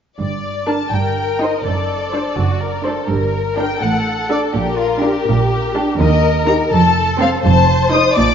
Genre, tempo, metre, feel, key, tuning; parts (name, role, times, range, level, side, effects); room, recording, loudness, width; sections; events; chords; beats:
quick classical-period movement for string orchestra; 83 BPM (dotted quarters); 6/8; straight; G minor; A4 = 440 Hz
rich studio violin section; melody; 0.2-8.3 s; Bb4 to Eb6; -19 LUFS; left 5 dB
rich studio cello section; bass; 0.2-8.3 s; Eb2 to Bb2; -20 LUFS; right 3 dB
rich studio double bass section; bass; 0.2-8.3 s; F1 to Eb2; -21 LUFS; right 3 dB
warm studio viola section; accompaniment; 0.7-8.1 s; C4 to C5; -21 LUFS; right 1 dB
rich studio violin section; second line; 0.9-8.3 s; F4 to D5; -20 LUFS; left 2 dB
moderate concert hall reverb, RT60 2.0 s; dark, warm production, nothing above 7.5 kHz; -14 LUFS; side -8 dB against mid
0.2-8.3 A section
0.2 Gm; 0.9 Cm/G; 1.7 D7/F#; 3.1 Gm; 3.8 D/A; 4.5 Gm/Bb; 6.0 Eb; 6.7 F; 7.4 F7
| 0.19 0.93 | 1.66 2.39 | 3.10 3.83 | 4.55 5.27 | 5.99 6.72 | 7.44 8.17